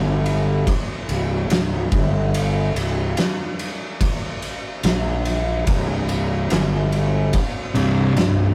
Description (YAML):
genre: stoner and doom metal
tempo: 72 BPM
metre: 4/4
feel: straight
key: unclear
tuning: A4 = 441 Hz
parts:
  - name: fuzz fingered electric bass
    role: bass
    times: 0.0-8.5 s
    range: C1 to Bb1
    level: -23 LUFS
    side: equal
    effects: overdrive
  - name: oversized low-tuned drum kit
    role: drums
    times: 0.3-8.4 s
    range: kick drum, ride cymbal, snare drum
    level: -25 LUFS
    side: equal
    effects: none
  - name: thick fuzz guitar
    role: riff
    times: 7.7-8.5 s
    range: C2 to C3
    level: -22 LUFS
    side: equal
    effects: distortion
  - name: thick fuzz guitar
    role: riff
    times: 7.7-8.5 s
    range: C2 to C3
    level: -22 LUFS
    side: equal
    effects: distortion
room: light reverb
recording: rough rehearsal-room recording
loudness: -21 LUFS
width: mono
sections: 0.0-8.5 A section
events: none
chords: 0.0 N.C.; 7.8 C5